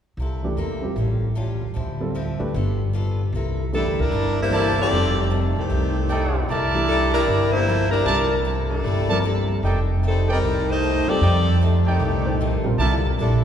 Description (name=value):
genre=jazz, big band swing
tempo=152 BPM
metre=4/4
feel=swing 64% on 8ths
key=C mixolydian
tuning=A4 = 440 Hz
part: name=picked acoustic archtop guitar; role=accompaniment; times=0.2-13.4 s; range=F2 to A4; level=-32 LUFS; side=left 2 dB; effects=none
part: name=upright bass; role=bass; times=0.2-13.4 s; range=F1 to F2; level=-22 LUFS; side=equal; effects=none
part: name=warm baby grand piano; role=accompaniment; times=0.4-13.2 s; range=Bb2 to C5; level=-30 LUFS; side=right 2 dB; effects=none
part: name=mellow saxophone section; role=melody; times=3.7-13.4 s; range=Eb3 to D5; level=-23 LUFS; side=left 2 dB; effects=none
part: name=mellow trumpet section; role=stabs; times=4.5-13.0 s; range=Eb4 to A5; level=-26 LUFS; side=right 1 dB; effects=none
room=wet church reverb, RT60 3.0 s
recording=recorded in a church or concert hall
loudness=-19 LUFS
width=side -9 dB against mid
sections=0.2-3.3 A section; 3.3-13.4 B section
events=none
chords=0.2 C13; 1.0 Aaug7; 1.8 Dm9; 2.5 G9; 3.3 C13; 4.9 F13; 6.5 C13; 9.6 F13; 12.8 C13